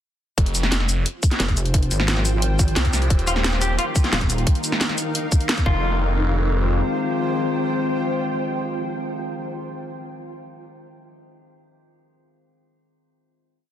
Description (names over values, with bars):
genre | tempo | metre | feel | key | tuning
dark technical drum and bass | 176 BPM | 4/4 | straight | F minor | A4 = 440 Hz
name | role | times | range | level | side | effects
phased detuned saw bass | bass | 0.4-6.8 s | Eb1 to C2 | -21 LUFS | equal | phaser, overdrive
drum and bass drum kit | drums | 0.4-5.6 s | hi-hat, shaker, snare drum | -23 LUFS | equal | none
electronic kick drum | drums | 0.4-5.7 s | none | -19 LUFS | equal | none
granular cloud pad | texture | 1.2-9.3 s | Eb4 to G5 | -29 LUFS | equal | built-in reverb, sidechain pumping
pulsing pluck wobble bass | bass | 1.4-4.5 s | Eb1 to Ab1 | -21 LUFS | equal | chorus
metallic inharmonic drone | sustained chords | 3.7-9.3 s | Eb3 to G4 | -27 LUFS | left 2 dB | chorus, built-in reverb, sidechain pumping
semi-hollow electric guitar | arpeggios | 3.3-6.0 s | F4 to G4 | -27 LUFS | left 3 dB | spring reverb, sidechain pumping, digital delay
room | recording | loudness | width
light reverb, digital ambience | dense, heavily limited modern master | -19 LUFS | side -10 dB against mid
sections
0.4-5.8 drop; 5.8-8.6 final note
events
drop 0.4-5.8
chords
0.4 Fm; 3.1 Eb; 5.7 Fm7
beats
| 0.38 0.72 1.06 1.40 | 1.74 2.08 2.42 2.76 | 3.10 3.44 3.79 4.13 | 4.47 4.81 5.15 5.49 | 5.83 6.17 6.51 6.85 | 7.20 7.54 7.88 8.22